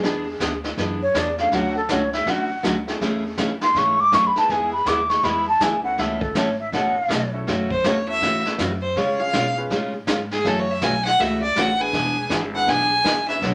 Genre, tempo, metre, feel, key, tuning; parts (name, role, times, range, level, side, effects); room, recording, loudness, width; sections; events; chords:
country, western swing; 161 BPM; 4/4; swing 63% on 8ths; A4 = 440 Hz
bright upright piano; accompaniment; 0.0-13.4 s; G#3 to C#5; -34 LUFS; equal
picked steel-string acoustic guitar; accompaniment; 0.0-13.5 s; B2 to C#5; -28 LUFS; equal
upright bass; bass; 0.0-13.5 s; E1 to C#3; -35 LUFS; equal
vintage brush drum kit; drums; 0.0-13.5 s; brushed snare drum, hi-hat, kick drum, snare drum; -30 LUFS; equal
mellow silver concert flute; melody; 1.0-7.3 s; A4 to D6; -22 LUFS; equal
rich fiddle; second line; 7.7-13.4 s; G#4 to G#5; -23 LUFS; equal
moderate studio reverb, RT60 0.5 s; -21 LUFS; mono
0.0-7.5 A section; 7.5-13.5 A section
flute solo 0.0-7.5; fiddle solo 7.5-13.5
0.0 E7; 1.5 Dmaj7; 3.0 Amaj7; 4.5 E; 6.0 Aadd9; 7.5 F#m7; 9.0 C#; 10.4 F#m7; 11.9 E7